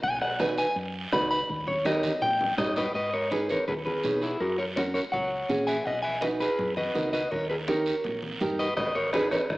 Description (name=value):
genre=latin, cumbia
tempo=165 BPM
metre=4/4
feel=straight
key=G# minor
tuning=A4 = 439 Hz
part: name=electric guitar at the edge of break-up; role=melody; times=0.0-9.4 s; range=E4 to B5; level=-27 LUFS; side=equal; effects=spring reverb
part: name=hollow-body short-scale fingered electric bass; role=bass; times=0.0-9.6 s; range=G#1 to B2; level=-39 LUFS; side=equal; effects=none
part: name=bombo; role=percussion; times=0.0-2.8, 8.8-9.6 s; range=none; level=-33 LUFS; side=equal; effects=none
part: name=congas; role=percussion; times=0.0-9.6 s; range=none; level=-38 LUFS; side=left 1 dB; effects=none
part: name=guiro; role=percussion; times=0.0-9.6 s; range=none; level=-40 LUFS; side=right 3 dB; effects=none
part: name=nylon-string guitar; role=accompaniment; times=0.4-9.4 s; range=C#4 to C#5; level=-30 LUFS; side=right 2 dB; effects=none
room=wet large studio reverb, RT60 1.2 s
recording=small speaker sound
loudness=-25 LUFS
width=side -19 dB against mid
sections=0.0-2.9 A section; 2.9-9.6 B section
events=clean electric guitar solo 0.0-2.9; drum fill 1.9-2.9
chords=0.0 B; 1.5 D#7; 2.9 G#m; 4.4 F#; 5.9 B; 7.3 D#7; 8.8 G#m